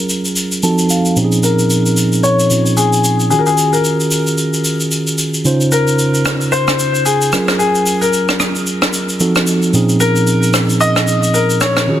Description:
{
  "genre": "amapiano",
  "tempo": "112 BPM",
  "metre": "4/4",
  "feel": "swing 58% on 16ths",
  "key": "unclear",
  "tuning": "A4 = 440 Hz",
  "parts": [
    { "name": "clear concert grand piano", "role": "melody", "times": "0.0-12.0 s", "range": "Ab4 to Eb5", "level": "-16 LUFS", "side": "left 3 dB", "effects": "low-pass filter, digital delay" },
    { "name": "mellow tine electric piano", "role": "accompaniment", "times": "0.0-12.0 s", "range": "Bb2 to A5", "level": "-14 LUFS", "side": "right 2 dB", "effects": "low-pass filter" },
    { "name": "shaker and rim click", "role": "drums", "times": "0.1-11.9 s", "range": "none", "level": "-18 LUFS", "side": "equal", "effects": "none" }
  ],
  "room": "light reverb, small room ambience",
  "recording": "dense, heavily limited modern master",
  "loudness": "-11 LUFS",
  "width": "side -11 dB against mid",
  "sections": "0.0-12.0 A section",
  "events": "filter sweep 0.0-12.0; tine electric piano fill 0.4-1.2",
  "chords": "0.0 Gbmaj9; 0.6 F7b9; 1.2 Bbm11; 3.3 Ebm11; 5.5 Dbmaj9; 7.3 Gbmaj9; 9.2 F7b9; 9.7 Bbm11"
}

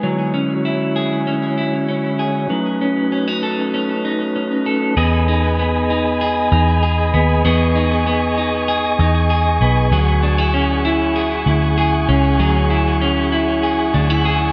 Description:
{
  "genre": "dream pop",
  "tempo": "97 BPM",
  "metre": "4/4",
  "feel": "straight",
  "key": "E major",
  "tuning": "A4 = 440 Hz",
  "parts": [
    { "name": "percussive tonewheel organ", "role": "sustained chords", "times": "0.0-14.5 s", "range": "D3 to C#6", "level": "-23 LUFS", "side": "equal", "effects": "fast rotary speaker" },
    { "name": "clean electric guitar", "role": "arpeggios", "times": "0.0-14.5 s", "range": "F#3 to A4", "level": "-21 LUFS", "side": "equal", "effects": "lush chorus, tape echo" },
    { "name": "vintage muted picked electric bass", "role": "bass", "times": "5.0-14.5 s", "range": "B1 to E2", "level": "-20 LUFS", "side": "equal", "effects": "none" }
  ],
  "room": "moderate spring reverb, RT60 2.1 s",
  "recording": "echo-heavy mix",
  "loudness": "-17 LUFS",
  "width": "mono",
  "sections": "0.0-5.0 A section; 5.0-14.5 B section",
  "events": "none",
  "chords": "0.0 Dmaj9#11; 2.5 B9; 5.0 Emaj7; 9.9 Dmaj9#11"
}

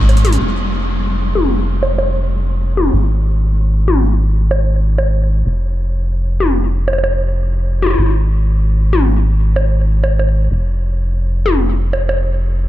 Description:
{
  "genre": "IDM",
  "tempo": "95 BPM",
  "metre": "4/4",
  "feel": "straight",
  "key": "F minor",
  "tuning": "A4 = 440 Hz",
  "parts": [
    { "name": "rubbery square bass", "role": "bass", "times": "0.0-12.7 s", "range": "F1 to Ab1", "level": "-14 LUFS", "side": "equal", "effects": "none" },
    { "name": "electro analog drum machine", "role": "drums", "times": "0.1-12.2 s", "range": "bongos, hi-hat, toms", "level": "-19 LUFS", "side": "left 1 dB", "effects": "overdrive, low-pass filter on snare, low-pass filter on hats, low-pass filter on toms, low-pass filter on perc, low-pass filter on room, digital delay" }
  ],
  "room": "light reverb",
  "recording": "dark, warm production",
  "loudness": "-13 LUFS",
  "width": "side -14 dB against mid",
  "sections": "0.4-12.7 A section",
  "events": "drum fill 0.1-0.4",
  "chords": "none"
}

